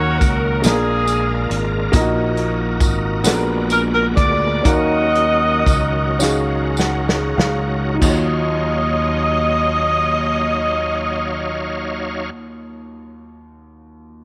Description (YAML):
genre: slow gospel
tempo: 30-46 BPM (dotted quarters)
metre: 6/8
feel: straight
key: Eb minor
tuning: A4 = 441 Hz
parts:
  - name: bright saxophone section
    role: melody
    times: 0.0-12.3 s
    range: D4 to Eb5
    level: -21 LUFS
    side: equal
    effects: none
  - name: warm upright piano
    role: accompaniment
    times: 0.0-14.2 s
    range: Eb2 to Gb5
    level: -25 LUFS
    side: equal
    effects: none
  - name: bright tonewheel organ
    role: sustained chords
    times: 0.0-12.3 s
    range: Gb3 to F5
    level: -29 LUFS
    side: equal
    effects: slow rotary speaker, overdrive, chorus vibrato
  - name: fingered electric bass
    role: bass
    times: 0.0-12.3 s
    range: Ab1 to Eb2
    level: -24 LUFS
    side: equal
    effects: none
  - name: natural country drum kit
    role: drums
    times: 0.2-8.3 s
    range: china cymbal, hi-hat, kick drum, snare drum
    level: -21 LUFS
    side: equal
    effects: none
  - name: tambourine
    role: percussion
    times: 0.2-8.6 s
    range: none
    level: -30 LUFS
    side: equal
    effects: none
room: light reverb, small room ambience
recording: none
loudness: -18 LUFS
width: mono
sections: 0.0-8.0 A section; 8.0-12.0 B section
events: slowing down 1.9-8.0; drum fill 6.2-8.0; upright piano fill 6.2-8.0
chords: 0.0 Ebm7; 0.6 Bb7; 1.9 Ebm/Bb; 3.2 Bb7b9b13; 4.7 Ebm9